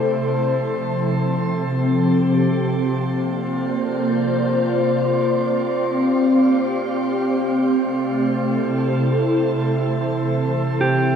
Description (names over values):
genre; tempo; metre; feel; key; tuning
ambient; free time; none; none; unclear; A4 = 440 Hz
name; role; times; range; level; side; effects
glassy FM pad; sustained chords; 0.0-11.2 s; C3 to F5; -17 LUFS; equal; ensemble chorus, built-in reverb, phaser
mellow electric guitar; arpeggios; 10.8-11.2 s; G4; -18 LUFS; right 2 dB; none
room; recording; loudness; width
wet shimmer reverb, RT60 8.2 s; cassette tape; -17 LUFS; side -7 dB against mid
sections
0.0-7.3 A section; 7.3-11.2 B section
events
none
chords
0.1 Fmaj7/C; 2.5 Bbmaj9/C; 4.9 C9sus4; 7.3 Am7/C; 9.6 C6